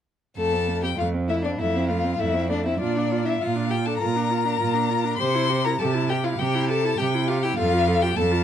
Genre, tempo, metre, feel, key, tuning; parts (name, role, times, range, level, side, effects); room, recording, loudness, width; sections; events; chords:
quick classical-period movement for string quartet; 100 BPM; 4/4; rubato; F major; A4 = 440 Hz
rich violin; melody; 0.4-8.4 s; D5 to C6; -26 LUFS; left 7 dB
bright violin; second line; 0.4-8.2 s; D4 to C5; -28 LUFS; left 4 dB
rich viola; accompaniment; 0.4-8.4 s; A3 to A4; -28 LUFS; right 2 dB
rich cello; bass; 0.4-8.4 s; F2 to C3; -25 LUFS; right 4 dB
light reverb; dark, warm production; -21 LUFS; side -9 dB against mid
0.4-8.4 A section
0.4 F; 2.8 Bb; 5.2 C; 7.6 F